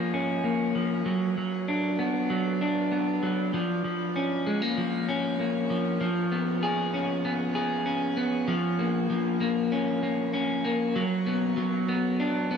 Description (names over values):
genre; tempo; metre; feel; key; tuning
dream pop; 97 BPM; 4/4; straight; unclear; A4 = 440 Hz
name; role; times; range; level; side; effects
electric guitar at the edge of break-up; solo; 0.0-12.6 s; E#3 to G#4; -25 LUFS; equal; lush chorus, low-pass filter, tape echo
room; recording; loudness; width
wet shimmer reverb, RT60 8.4 s; none; -25 LUFS; side -7 dB against mid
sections
0.0-8.5 A section; 8.5-12.6 B section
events
none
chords
0.0 A#m/E#; 1.1 Bm; 3.5 A#m/E#; 6.0 C#7; 8.5 A#m/E#; 11.0 Bm